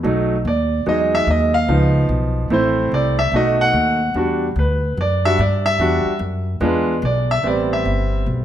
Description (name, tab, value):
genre	jazz, big band swing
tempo	146 BPM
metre	4/4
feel	swing 64% on 8ths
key	unclear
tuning	A4 = 440 Hz
part	bright concert grand piano	accompaniment	0.0-8.4 s	E#3 to F#5	-18 LUFS	right 1 dB	none
part	upright bass	bass	0.0-8.4 s	G1 to G2	-20 LUFS	equal	none
room	moderate large studio reverb, RT60 1.4 s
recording	none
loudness	-16 LUFS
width	side -11 dB against mid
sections	0.0-7.4 A section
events	grand piano solo 0.0-8.4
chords	0.0 B7; 0.9 Emaj7; 1.7 C#7; 2.5 Amadd11; 3.3 B7; 4.2 Em7; 6.6 E7b9; 7.4 Am7